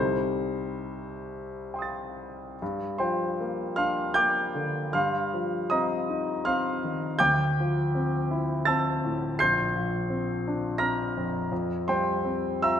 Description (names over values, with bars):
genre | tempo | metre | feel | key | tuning
classical, impressionist solo piano | 65-86 BPM | 3/4 | rubato | G minor | A4 = 443 Hz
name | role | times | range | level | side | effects
warm concert grand piano | solo | 0.0-12.8 s | Bb1 to C7 | -25 LUFS | equal | none
room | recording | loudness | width
wet scoring stage reverb, RT60 1.7 s | none | -25 LUFS | side -9 dB against mid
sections
0.0-2.6 A section; 2.6-12.8 B section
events
none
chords
0.0 Cm6; 2.6 Gm7; 4.9 F9sus4/G; 7.2 Dm9; 9.4 Bbadd9; 11.5 Fsus2